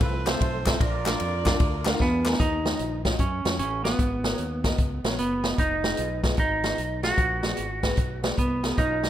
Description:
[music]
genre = uptempo gospel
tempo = 150 BPM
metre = 4/4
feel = swing 64% on 8ths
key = Eb minor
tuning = A4 = 440 Hz
[part]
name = warm horn section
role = melody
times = 0.0-2.2 s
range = C4 to D5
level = -31 LUFS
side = right 3 dB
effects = none
[part]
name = warm upright piano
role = accompaniment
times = 0.0-9.1 s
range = Ab2 to Bb5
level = -34 LUFS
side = left 1 dB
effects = none
[part]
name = percussive tonewheel organ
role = sustained chords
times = 0.0-2.4, 8.8-9.1 s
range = F3 to Bb4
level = -36 LUFS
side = right 3 dB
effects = slow rotary speaker, overdrive, chorus vibrato
[part]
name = modern bright fingered electric bass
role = bass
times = 0.0-9.1 s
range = F1 to Gb2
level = -32 LUFS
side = equal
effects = none
[part]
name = swinging big-band drum kit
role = drums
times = 0.0-9.1 s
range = hi-hat, kick drum, ride cymbal, snare drum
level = -26 LUFS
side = equal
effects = none
[part]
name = group handclap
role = percussion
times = 0.3-2.3 s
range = none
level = -36 LUFS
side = left 5 dB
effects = none
[part]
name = clean lap steel guitar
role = melody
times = 2.0-9.1 s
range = Cb4 to Gb4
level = -27 LUFS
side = right 2 dB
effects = slapback echo
[sound]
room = light reverb, studio reverb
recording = rough home demo mix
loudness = -22 LUFS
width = side -12 dB against mid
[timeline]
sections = 0.0-2.4 A section; 2.4-9.1 B section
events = upright piano fill 1.6-2.4; drum fill 2.0-2.4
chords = 0.0 F; 0.8 Bb; 2.4 Ebm9; 4.0 Abm11; 5.6 Fm7b5; 7.2 Bb7b9b13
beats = 0.01 0.40 | 0.80 1.20 1.60 2.00 | 2.39 2.79 3.19 3.59 | 3.99 4.39 4.79 5.19 | 5.59 5.99 6.38 6.78 | 7.18 7.58 7.98 8.38 | 8.78

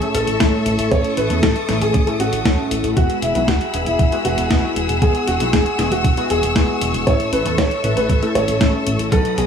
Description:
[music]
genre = italo disco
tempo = 117 BPM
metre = 4/4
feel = straight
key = unclear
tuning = A4 = 440 Hz
[part]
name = dark concert grand piano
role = melody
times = 0.0-9.5 s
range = E4 to C#5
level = -21 LUFS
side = equal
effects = digital delay
[part]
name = clear studio string section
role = sustained chords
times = 0.0-9.5 s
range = F#4 to E6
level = -24 LUFS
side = left 2 dB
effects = none
[part]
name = chorused polysynth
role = stabs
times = 0.0-9.5 s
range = A2 to B4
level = -23 LUFS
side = left 1 dB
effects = digital delay
[part]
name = clean 12-bit digital drum machine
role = drums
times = 0.0-9.5 s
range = hi-hat, snare drum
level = -23 LUFS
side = left 1 dB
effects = studio reverb
[part]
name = chorused synth bass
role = bass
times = 0.1-9.5 s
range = E1 to E2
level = -23 LUFS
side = equal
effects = tube saturation, digital delay
[part]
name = electronic kick drum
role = drums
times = 0.4-9.2 s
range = none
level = -18 LUFS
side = right 1 dB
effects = studio reverb
[sound]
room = light reverb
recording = none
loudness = -15 LUFS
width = side -7 dB against mid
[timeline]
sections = 0.0-9.5 A section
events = none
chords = 0.0 A; 3.0 Eadd9; 7.1 A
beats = 0.40 | 0.92 1.43 1.94 2.46 | 2.97 3.48 3.99 4.51 | 5.02 5.53 6.04 6.56 | 7.07 7.58 8.10 8.61 | 9.12

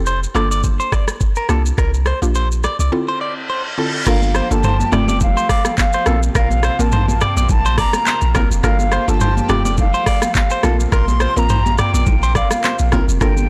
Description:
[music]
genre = afrobeats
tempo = 105 BPM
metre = 4/4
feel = swing 55% on 16ths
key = unclear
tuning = A4 = 442 Hz
[part]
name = mallet-like synth pluck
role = accompaniment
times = 0.0-13.5 s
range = D3 to Bb4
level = -25 LUFS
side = equal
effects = chorus, phaser
[part]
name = warm 808-style bass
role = bass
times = 0.0-13.5 s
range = F1 to C2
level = -20 LUFS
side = equal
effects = none
[part]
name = direct-recorded clean electric guitar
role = riff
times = 0.1-13.3 s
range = A4 to D5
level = -25 LUFS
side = equal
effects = phaser
[part]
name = afro-pop drum kit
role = drums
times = 0.1-13.5 s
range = crash cymbal, handclaps, hi-hat, kick drum, rim click, shaker, toms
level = -21 LUFS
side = equal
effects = soft clipping on snare
[part]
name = reverse cymbal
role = sound effects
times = 3.1-4.1 s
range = none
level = -27 LUFS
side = equal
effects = none
[part]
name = silver concert flute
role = melody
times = 4.1-13.5 s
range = F5 to C6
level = -24 LUFS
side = equal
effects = digital delay
[part]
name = lush unison pad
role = sustained chords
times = 4.1-13.5 s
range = C3 to G4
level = -32 LUFS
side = equal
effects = chorus
[part]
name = congas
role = percussion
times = 4.2-13.5 s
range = none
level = -29 LUFS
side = equal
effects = none
[sound]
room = light reverb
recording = blown-out, overdriven recording, overdrive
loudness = -16 LUFS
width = mono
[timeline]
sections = 0.0-4.1 A section; 4.1-13.5 B section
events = break 2.9-4.1; reverse cymbal 3.1-4.1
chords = 0.4 Gm7; 1.5 C7sus4; 2.9 Dm7; 4.1 Gm7; 4.9 Fadd9; 6.1 Bbsus2; 8.6 Gm7; 9.5 Fadd9; 10.6 Bbsus2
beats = 0.07 0.64 1.21 | 1.78 2.35 2.92 3.50 | 4.07 4.64 5.21 5.78 | 6.35 6.92 7.50 8.07 | 8.64 9.21 9.78 10.35 | 10.92 11.50 12.07 12.64 | 13.21

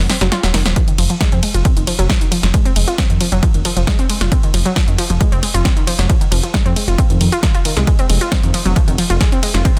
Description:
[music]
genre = driving peak-time techno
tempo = 135 BPM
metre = 4/4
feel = straight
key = F phrygian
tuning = A4 = 438 Hz
[part]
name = warbly dusty pluck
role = riff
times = 0.0-9.8 s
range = Eb3 to F4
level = -23 LUFS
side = equal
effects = chorus, sidechain pumping, tape echo
[part]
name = dark detuned saw bass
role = bass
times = 0.0-9.6 s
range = Eb1 to F2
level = -19 LUFS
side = equal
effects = sidechain pumping
[part]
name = punchy analog drum machine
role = drums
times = 0.1-9.8 s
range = hi-hat, ride cymbal, snare drum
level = -23 LUFS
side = equal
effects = none
[part]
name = electronic kick drum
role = drums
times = 0.8-9.7 s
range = none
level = -18 LUFS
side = equal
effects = none
[sound]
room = digital ambience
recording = dense, heavily limited modern master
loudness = -15 LUFS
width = mono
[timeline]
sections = 0.0-9.8 A section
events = drum fill 0.0-0.8; kick drops out 0.3-0.8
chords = none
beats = 0.32 | 0.76 1.21 1.65 2.10 | 2.54 2.98 3.43 3.87 | 4.32 4.76 5.21 5.65 | 6.09 6.54 6.98 7.43 | 7.87 8.32 8.76 9.21 | 9.65

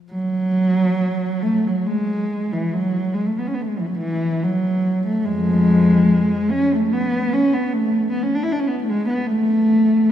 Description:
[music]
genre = classical, free, expressive piece for unaccompanied cello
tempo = 63-78 BPM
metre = 3/4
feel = rubato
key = F# minor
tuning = A4 = 441 Hz
[part]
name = dark cello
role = solo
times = 0.1-10.1 s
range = E#2 to E4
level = -17 LUFS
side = equal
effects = none
[sound]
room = wet church reverb, RT60 3.6 s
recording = minimal, uncompressed stereo recording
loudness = -17 LUFS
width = side -10 dB against mid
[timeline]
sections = 0.1-10.1 A section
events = none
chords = none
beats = | 0.09 1.00 1.86 | 2.72 3.58 4.43 | 5.25 6.08 6.91 | 7.70 8.49 9.27 | 10.09

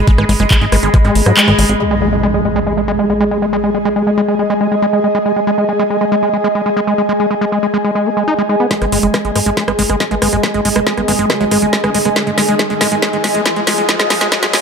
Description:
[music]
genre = psychedelic trance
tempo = 139 BPM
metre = 4/4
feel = straight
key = G# minor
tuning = A4 = 440 Hz
[part]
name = overtone-sweeping drone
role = sustained chords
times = 0.0-14.6 s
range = G#3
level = -19 LUFS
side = right 1 dB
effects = chorus, built-in reverb, sidechain pumping
[part]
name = plucky analog bass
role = bass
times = 0.0-1.8, 8.8-14.6 s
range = F#1 to G#2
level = -18 LUFS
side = equal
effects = none
[part]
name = ethereal airy pad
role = texture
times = 0.0-14.6 s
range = G#4 to B5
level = -20 LUFS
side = left 1 dB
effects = ensemble chorus, built-in reverb, tremolo, sidechain pumping
[part]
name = overdriven acid bass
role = riff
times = 0.1-14.6 s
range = F#3 to D#4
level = -16 LUFS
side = equal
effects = auto-pan, sidechain pumping, digital delay
[part]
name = electronic kick drum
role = drums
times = 0.1-1.0, 8.7-14.4 s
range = none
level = -13 LUFS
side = equal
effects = overdrive, high-pass filter on kick
[part]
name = garage drum kit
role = drums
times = 0.1-1.8, 8.7-14.6 s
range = handclaps, hi-hat, rim click, snare drum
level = -16 LUFS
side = right 1 dB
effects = overdrive
[part]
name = impact and riser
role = sound effects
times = 1.8-3.5, 11.0-14.6 s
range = none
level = -23 LUFS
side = equal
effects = none
[part]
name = resonant blip pluck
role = second line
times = 10.1-11.5 s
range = F#3 to B3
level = -27 LUFS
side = right 4 dB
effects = none
[sound]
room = moderate lush hall reverb, RT60 2.0 s, digital ambience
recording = high-pass filter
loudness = -11 LUFS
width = side -6 dB against mid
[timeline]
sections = 0.0-1.8 A section; 1.8-8.7 B section; 8.7-14.6 C section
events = drop 0.0-1.8; kick drops out 1.4-1.8; band accent 1.4; impact 1.8-3.5; filter sweep on acid bass 1.8-8.7, 8.7-14.6; filter sweep on synth drone 1.8-8.7; build-up 8.7-14.6; drum fill 8.7-14.6; filter sweep 8.7-14.6; riser 11.0-14.6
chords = 0.0 G#5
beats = | 0.07 0.51 0.94 1.37 | 1.80 2.23 2.67 3.10 | 3.53 3.96 4.39 4.82 | 5.25 5.69 6.12 6.55 | 6.98 7.41 7.84 8.28 | 8.71 9.14 9.57 10.00 | 10.44 10.87 11.30 11.73 | 12.16 12.59 13.03 13.46 | 13.89 14.32

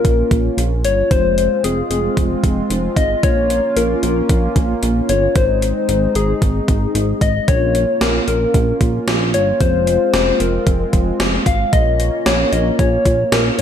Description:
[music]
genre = synth-pop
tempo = 113 BPM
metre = 4/4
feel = straight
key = Bb minor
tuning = A4 = 440 Hz
[part]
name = soft struck synth lead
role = melody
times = 0.0-13.6 s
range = Ab4 to F5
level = -18 LUFS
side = left 4 dB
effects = chorus, tremolo, slapback echo
[part]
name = chorused pulse-width pad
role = sustained chords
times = 0.0-13.6 s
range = Ab3 to F4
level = -22 LUFS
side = right 1 dB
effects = none
[part]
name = chorused synth bass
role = bass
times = 0.0-13.6 s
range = F1 to Bb1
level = -19 LUFS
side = right 1 dB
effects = none
[part]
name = gated 80s digital drum machine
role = drums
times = 0.0-13.6 s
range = hi-hat, kick drum, snare drum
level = -18 LUFS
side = right 1 dB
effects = gated reverb, gated reverb snare, overdrive
[sound]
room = moderate recital hall reverb, RT60 1.4 s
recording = big arena sound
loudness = -14 LUFS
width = side -9 dB against mid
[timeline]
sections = 0.0-13.6 A section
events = none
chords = 0.0 Bbm; 1.1 Fm; 3.2 Bbm; 5.4 Ab; 7.5 Bbm; 9.6 Fm; 11.7 Bbm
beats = 0.05 0.58 | 1.11 1.64 2.17 2.70 | 3.23 3.77 4.30 4.83 | 5.36 5.89 6.42 6.95 | 7.48 8.01 8.54 9.07 | 9.61 10.14 10.67 11.20 | 11.73 12.26 12.79 13.32

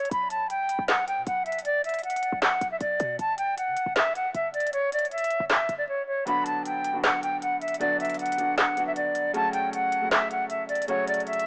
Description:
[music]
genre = hip hop, trap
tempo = 156 BPM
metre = 4/4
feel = half-time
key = B minor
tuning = A4 = 440 Hz
[part]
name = silver concert flute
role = melody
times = 0.0-11.5 s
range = C#5 to B5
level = -25 LUFS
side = equal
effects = low-pass filter, cassette tape
[part]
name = short 808-style bass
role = bass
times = 0.1-5.9 s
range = F#1 to C#3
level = -36 LUFS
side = equal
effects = tube saturation
[part]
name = trap drum kit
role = drums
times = 0.1-11.5 s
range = handclaps, hi-hat, snare drum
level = -26 LUFS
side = equal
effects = vintage 12-bit sampler grit, cassette tape
[part]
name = warm baby grand piano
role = accompaniment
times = 6.3-11.5 s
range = C#3 to F#4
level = -32 LUFS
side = equal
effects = low-pass filter, cassette tape
[sound]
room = light reverb, small room ambience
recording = home recording on cassette, vinyl crackle, small speaker sound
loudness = -24 LUFS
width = side -35 dB against mid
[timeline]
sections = 0.0-11.5 A section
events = break 5.9-6.3; kick muted 6.3-11.5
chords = 0.1 B5; 3.2 F#5; 6.3 Bm; 9.3 F#m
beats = | 0.11 0.50 0.88 1.27 | 1.65 2.04 2.42 2.81 | 3.19 3.58 3.96 4.34 | 4.73 5.11 5.50 5.88 | 6.27 6.65 7.04 7.42 | 7.81 8.19 8.57 8.96 | 9.35 9.73 10.11 10.50 | 10.88 11.27

